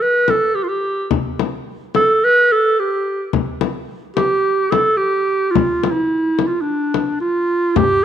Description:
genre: Turkish makam ensemble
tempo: 108 BPM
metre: 4/4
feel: straight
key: unclear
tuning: A4 = 440 Hz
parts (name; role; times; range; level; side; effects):
- warm clarinet; melody; 0.0-8.0 s; D4 to B4-30c; -15 LUFS; right 2 dB; none
- frame drum; percussion; 0.3-7.9 s; none; -20 LUFS; left 8 dB; none
- darbuka; percussion; 7.8-7.9 s; none; -22 LUFS; right 5 dB; none
room: moderate echo chamber reverb, RT60 1.8 s, small room ambience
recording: 1960s-style stereo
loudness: -15 LUFS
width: side -9 dB against mid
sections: 0.0-7.8 A section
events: none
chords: none

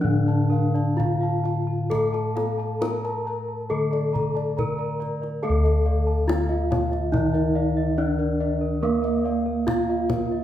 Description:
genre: Javanese gamelan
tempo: 63-71 BPM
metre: 4/4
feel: straight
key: D pelog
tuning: A4 = 441 Hz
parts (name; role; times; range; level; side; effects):
- gamelan-type bronze metallophone; melody; 0.0-10.4 s; Bb3 to Bb4; -26 LUFS; left 1 dB; none
- gamelan-type bronze metallophone; accompaniment; 0.0-10.4 s; D3 to Bb3; -28 LUFS; equal; none
- gamelan-type bossed gongs; arpeggios; 0.0-10.3 s; Bb4 to Bb5; -33 LUFS; left 4 dB; none
- gamelan-type bronze metallophone; arpeggios; 0.0-10.4 s; Bb4 to Bb5; -34 LUFS; right 5 dB; none
- gamelan-type bossed gongs; bass; 0.0-10.4 s; D2 to Bb4; -26 LUFS; left 1 dB; none
- kendang; percussion; 0.8-10.3 s; none; -30 LUFS; left 2 dB; none
room: wet recital hall reverb, RT60 1.4 s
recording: recorded in a church or concert hall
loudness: -21 LUFS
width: side -11 dB against mid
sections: 0.0-5.4 A section; 5.4-10.4 B section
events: none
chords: none

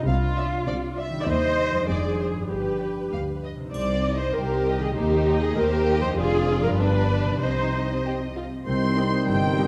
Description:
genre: cinematic, playful, whimsical film cue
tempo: 98 BPM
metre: 2/4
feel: straight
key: C minor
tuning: A4 = 440 Hz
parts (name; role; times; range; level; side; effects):
- warm studio violin section; second line; 0.0-9.7 s; D4 to F5; -33 LUFS; equal; none
- concert harp; arpeggios; 0.0-9.7 s; F2 to G5; -33 LUFS; equal; none
- rich studio viola section; accompaniment; 0.1-9.7 s; C4 to D5; -28 LUFS; equal; none
- rich studio double bass section; bass; 0.1-9.7 s; F1 to Eb2; -31 LUFS; equal; none
- warm studio cello section; bass; 0.1-9.7 s; C2 to C4; -32 LUFS; equal; none
- rich studio violin section; melody; 0.4-9.7 s; C5 to C6; -37 LUFS; equal; none
- triangle; percussion; 3.7-4.9 s; none; -56 LUFS; equal; none
- clear clarinet; second line; 8.7-9.7 s; C4; -34 LUFS; equal; none
- hollow small flute group; second line; 8.7-9.7 s; G6; -38 LUFS; equal; none
- warm oboe; second line; 8.7-9.7 s; C5; -37 LUFS; equal; none
- mellow bassoon; accompaniment; 8.7-9.7 s; Eb3; -34 LUFS; equal; none
- mellow French horn section; sustained chords; 8.7-9.7 s; G3 to Eb4; -32 LUFS; equal; none
- dark tuba; bass; 8.7-9.7 s; G1 to C2; -29 LUFS; equal; none
room: moderate scoring stage reverb, RT60 1.7 s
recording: dark, warm production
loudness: -24 LUFS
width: mono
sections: 0.0-8.7 A section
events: none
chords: 0.1 Bdim/C; 1.3 Cm/Eb; 1.9 Ddim/F; 2.5 G; 3.7 Cm; 5.0 Cm/Eb; 6.2 Dm7b5/F; 6.8 G; 7.4 Cm

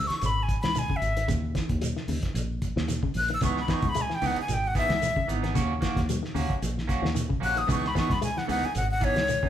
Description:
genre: afrobeat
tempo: 112 BPM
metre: 4/4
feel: swing 54% on 16ths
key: C# dorian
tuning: A4 = 440 Hz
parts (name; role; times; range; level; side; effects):
- breathy bright jazz flute; melody; 0.0-9.5 s; C#5 to F#6; -28 LUFS; left 2 dB; none
- electric guitar with an envelope filter; arpeggios; 0.0-9.5 s; C#3 to G#3; -35 LUFS; left 6 dB; none
- fingered electric bass; bass; 0.0-9.4 s; G#1 to D#2; -31 LUFS; equal; none
- cloth-damped thuddy drum kit; drums; 0.1-9.5 s; hi-hat, kick drum, snare drum; -30 LUFS; equal; none
- shekere; percussion; 0.2-9.4 s; none; -36 LUFS; right 3 dB; none
- electric guitar at the edge of break-up; stabs; 3.4-9.5 s; E3 to G#4; -32 LUFS; right 4 dB; none
room: moderate large studio reverb, RT60 1.1 s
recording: band playing live in one room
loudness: -24 LUFS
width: side -10 dB against mid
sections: 0.0-9.5 A section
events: flute solo 0.0-9.5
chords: 0.0 C#m; 1.3 D#7(no3); 3.4 C#m9; 5.6 D#m7; 7.7 C#m9

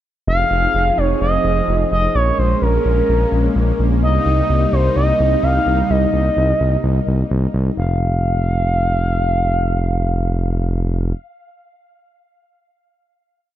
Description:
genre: pop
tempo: 128 BPM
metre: 4/4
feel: straight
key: unclear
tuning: A4 = 440 Hz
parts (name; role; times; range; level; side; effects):
- expressive synth lead; melody; 0.3-11.1 s; Bb4 to F5; -19 LUFS; equal; chorus, ping-pong delay
- brassy analog pad; sustained chords; 0.3-7.7 s; C3 to Ab4; -22 LUFS; equal; chorus, phaser
- smooth synth bass; bass; 0.3-11.1 s; F1 to C2; -17 LUFS; equal; none
room: light reverb, digital ambience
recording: none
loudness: -14 LUFS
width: side -12 dB against mid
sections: 0.3-7.8 verse; 7.8-11.5 final note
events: none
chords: 0.3 Fm7; 2.1 Bbm7; 4.0 Cm7; 7.8 N.C.

